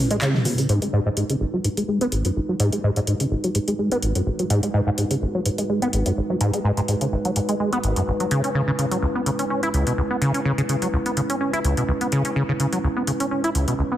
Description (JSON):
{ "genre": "acid house", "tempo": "126 BPM", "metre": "4/4", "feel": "swing 54% on 16ths", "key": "G# minor", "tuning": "A4 = 440 Hz", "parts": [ { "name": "dark analog pad", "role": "sustained chords", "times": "0.0-14.0 s", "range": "G#3 to B4", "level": "-28 LUFS", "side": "equal", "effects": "wide subtle chorus" }, { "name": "deep acid bass", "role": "riff", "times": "0.0-14.0 s", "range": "G#1 to E4", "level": "-21 LUFS", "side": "equal", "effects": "tube saturation, analog chorus, cassette tape, ping-pong delay" }, { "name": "electro analog drum machine", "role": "drums", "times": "0.1-13.8 s", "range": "handclaps, hi-hat, toms", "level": "-28 LUFS", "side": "equal", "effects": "overdrive" }, { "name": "shaker and snare drum", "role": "drums", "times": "0.2-0.7 s", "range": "none", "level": "-36 LUFS", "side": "right 1 dB", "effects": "high-pass filter on hats, high-pass filter on snare, high-pass filter on perc, high-pass filter on room" } ], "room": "light reverb, small room ambience", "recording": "heavily compressed radio sound, multiband compression", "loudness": "-20 LUFS", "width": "side -12 dB against mid", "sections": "0.7-14.0 A section", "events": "none", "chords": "0.0 C#m7; 0.7 G#m7; 8.3 C#m7" }